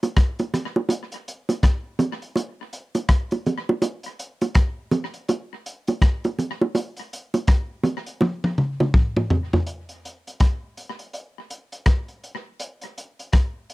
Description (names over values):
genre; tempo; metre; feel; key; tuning
reggae; 82 BPM; 4/4; swing 61% on 16ths; none; none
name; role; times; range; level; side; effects
crunchy breakbeat drum kit; drums; 0.0-13.7 s; hi-hat, kick drum, rim click, toms; -21 LUFS; left 1 dB; tape echo
bongos; percussion; 0.0-9.7 s; none; -22 LUFS; right 2 dB; none
room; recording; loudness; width
little or no reverb; dry, close 1970s-style studio recording; -21 LUFS; side -20 dB against mid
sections
0.0-9.7 A section; 9.7-13.7 B section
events
drum fill 8.2-9.7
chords
none